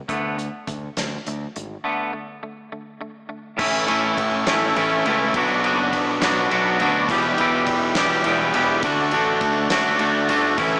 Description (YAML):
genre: indie rock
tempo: 69 BPM (dotted quarters)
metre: 6/8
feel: straight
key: D major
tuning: A4 = 438 Hz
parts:
  - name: twangy electric guitar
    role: riff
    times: 0.0-10.8 s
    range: E2 to G4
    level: -23 LUFS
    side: equal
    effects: slapback echo
  - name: growling fingered electric bass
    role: bass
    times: 0.1-10.8 s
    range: E1 to D2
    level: -33 LUFS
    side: equal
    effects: overdrive
  - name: unplugged drum kit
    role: drums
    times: 0.1-10.7 s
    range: crash cymbal, hi-hat, kick drum, ride cymbal, snare drum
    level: -30 LUFS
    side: equal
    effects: none
  - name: overdriven combo organ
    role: sustained chords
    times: 3.6-10.8 s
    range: E4 to B5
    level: -32 LUFS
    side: equal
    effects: none
  - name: fuzz guitar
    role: riff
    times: 3.6-10.8 s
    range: A2 to G4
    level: -26 LUFS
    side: equal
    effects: distortion, lush chorus, tape echo, slapback echo
room: moderate lush hall reverb, RT60 1.8 s, studio reverb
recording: big arena sound, small speaker sound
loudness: -20 LUFS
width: mono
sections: 0.0-3.6 A section; 3.6-10.8 B section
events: none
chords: 0.1 D5; 3.6 A; 5.3 Bm; 7.1 Em; 8.8 D